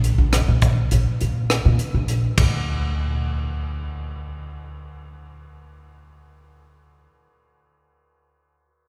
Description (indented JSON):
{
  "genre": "progressive instrumental, band music in an uneven meter",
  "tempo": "103 BPM",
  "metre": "5/4",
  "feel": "straight",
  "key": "unclear",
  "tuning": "A4 = 443 Hz",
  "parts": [
    { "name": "upright bass", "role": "bass", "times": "0.0-7.1 s", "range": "Bb1 to Bb2", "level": "-23 LUFS", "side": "equal", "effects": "none" },
    { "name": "tight funk drum kit", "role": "drums", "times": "0.0-2.5 s", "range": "hi-hat, kick drum, ride cymbal, rim click", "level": "-26 LUFS", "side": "equal", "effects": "none" }
  ],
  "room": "wet cathedral reverb, RT60 5.2 s",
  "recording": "recorded in a church or concert hall",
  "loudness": "-21 LUFS",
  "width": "mono",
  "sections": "0.0-2.7 A section; 2.7-5.6 B section",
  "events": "none",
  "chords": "none"
}